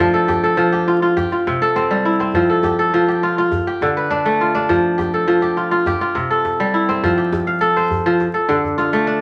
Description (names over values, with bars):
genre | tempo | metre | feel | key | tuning
west african traditional, West African string and xylophone music | 102 BPM | 4/4 | straight | F lydian | A4 = 440 Hz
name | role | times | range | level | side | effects
kora | arpeggios | 0.0-9.2 s | C3 to F5 | -17 LUFS | equal | none
djembe | percussion | 0.3-8.9 s | none | -30 LUFS | equal | none
room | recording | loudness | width
wet studio reverb, RT60 0.6 s | vinyl crackle | -17 LUFS | mono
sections
0.0-7.0 A section; 7.0-9.2 B section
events
none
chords
0.0 F; 1.2 C; 2.3 F; 3.5 Dm; 4.7 F; 5.9 C; 7.0 F; 8.2 Dm